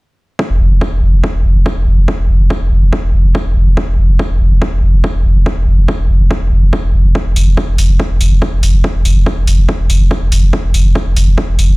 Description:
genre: driving peak-time techno.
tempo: 142 BPM.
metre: 4/4.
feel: straight.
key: unclear.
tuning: A4 = 441 Hz.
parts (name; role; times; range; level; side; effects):
electronic kick drum; drums; 0.4-11.5 s; none; -17 LUFS; equal; high-pass filter on kick.
saturated sub bass; bass; 0.5-11.8 s; F1; -10 LUFS; equal; sidechain pumping, low-pass filter.
electronic hi-hat; drums; 7.4-11.7 s; none; -23 LUFS; equal; sidechain pumping on hats.
room: light reverb, digital ambience.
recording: played on a big sound system in a bare room, stone room reverb.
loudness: -10 LUFS.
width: side -25 dB against mid.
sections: 0.4-11.8 A section.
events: none.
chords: none.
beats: | 0.39 0.81 1.24 1.66 | 2.08 2.50 2.93 3.35 | 3.77 4.19 4.62 5.04 | 5.46 5.88 6.31 6.73 | 7.15 7.57 8.00 8.42 | 8.84 9.26 9.69 10.11 | 10.53 10.95 11.38.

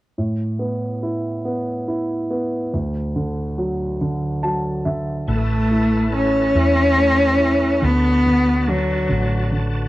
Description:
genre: pop.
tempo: 47 BPM (dotted quarters).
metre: 6/8.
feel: straight.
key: A major.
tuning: A4 = 440 Hz.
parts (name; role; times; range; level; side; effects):
warm concert grand piano; accompaniment; 0.2-9.9 s; D2 to A5; -23 LUFS; right 1 dB; cassette tape.
rich cello; melody; 5.3-9.5 s; F#3 to C#4; -17 LUFS; equal; cassette tape, plate reverb.
bright tonewheel organ; sustained chords; 5.3-9.9 s; E4 to A5; -31 LUFS; equal; chorus vibrato, fast rotary speaker, cassette tape.
woody fretless electric bass; bass; 5.3-9.9 s; A1 to E2; -21 LUFS; equal; ensemble chorus.
room: moderate booth ambience, RT60 0.2 s.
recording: home recording on cassette.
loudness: -17 LUFS.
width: side -16 dB against mid.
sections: 0.2-5.3 A section; 5.3-9.9 B section.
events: grand piano fill 4.0-5.3.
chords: 0.2 Asus2; 2.7 D; 5.3 Asus2; 7.8 D6.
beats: | 0.17 1.45 | 2.73 4.00 | 5.28 6.56 | 7.83 9.11.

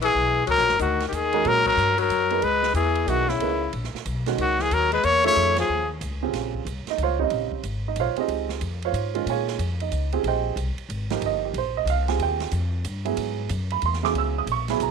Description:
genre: modal jazz.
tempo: 184 BPM.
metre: 3/4.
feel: swing 63% on 8ths.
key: Bb dorian from 6.3 s.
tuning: A4 = 440 Hz.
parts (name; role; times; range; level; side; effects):
clear trumpet; melody; 0.0-5.9 s; E4 to C#5; -21 LUFS; left 1 dB; none.
growling tenor saxophone; second line; 0.0-5.9 s; C#3 to A#3; -26 LUFS; left 15 dB; none.
warm upright piano; accompaniment; 0.0-14.9 s; C#3 to E6; -26 LUFS; right 14 dB; none.
upright bass; bass; 0.0-14.9 s; F#1 to A#2; -28 LUFS; left 1 dB; none.
swinging big-band drum kit; drums; 0.0-14.9 s; crash cymbal, hi-hat, kick drum, ride cymbal, snare drum; -36 LUFS; right 10 dB; none.
room: light reverb, small room ambience.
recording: 1960s-style stereo with parts hard left and right.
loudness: -21 LUFS.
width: side -6 dB against mid.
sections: 0.0-6.3 A section; 6.3-14.2 B section.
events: band accent 1.6, 5.5.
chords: 0.5 D#m7; 2.4 C#m11; 4.4 D#m7/C#; 5.4 Fm7; 6.3 Bbm9; 10.2 Cm; 13.2 E69; 14.2 C#m7.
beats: 0.15 | 0.47 0.80 1.12 | 1.45 1.78 2.10 | 2.43 2.76 3.08 | 3.41 3.73 4.06 | 4.38 4.71 5.04 | 5.36 5.69 6.01 | 6.34 6.66 6.99 | 7.32 7.64 7.97 | 8.29 8.62 8.94 | 9.27 9.60 9.92 | 10.25 10.57 10.90 | 11.22 11.55 11.87 | 12.20 12.52 12.85 | 13.17 13.50 13.82 | 14.15 14.47 14.80.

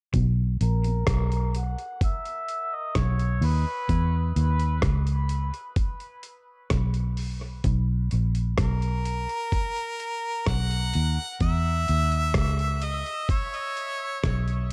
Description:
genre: dub reggae.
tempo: 64 BPM.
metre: 4/4.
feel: straight.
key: B major.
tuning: A4 = 440 Hz.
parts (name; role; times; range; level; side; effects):
vintage muted fingered electric bass; bass; 0.1-14.7 s; A#1 to E2; -26 LUFS; equal; none.
dusty soul sampler-style drum kit; drums; 0.1-14.7 s; hi-hat, kick drum, rim click; -30 LUFS; equal; none.
bright harmonica; melody; 0.6-14.7 s; A#4 to F#5; -33 LUFS; equal; low-pass filter, dub echo.
room: light reverb, digital ambience.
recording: echo-heavy mix.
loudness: -26 LUFS.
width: mono.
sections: 0.1-7.6 A section; 7.6-14.7 B section.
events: filter sweep on harmonica 0.1-7.6.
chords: 0.1 N.C.; 3.9 E5; 7.6 B5; 11.4 E5.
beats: | 0.14 1.07 2.01 2.95 | 3.89 4.83 5.77 6.71 | 7.65 8.59 9.53 10.47 | 11.41 12.35 13.29 14.23.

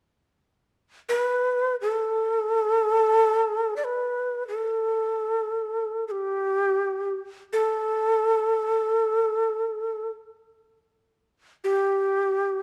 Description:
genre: japanese traditional, Japanese chamber music.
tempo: free time.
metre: none.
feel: none.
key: unclear.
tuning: A4 = 440 Hz.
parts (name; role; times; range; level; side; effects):
breathy shakuhachi; solo; 1.1-12.6 s; G4 to D5; -25 LUFS; equal; none.
room: light reverb.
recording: dark, warm production.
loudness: -25 LUFS.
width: mono.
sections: 0.2-12.6 A section.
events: none.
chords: none.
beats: free time.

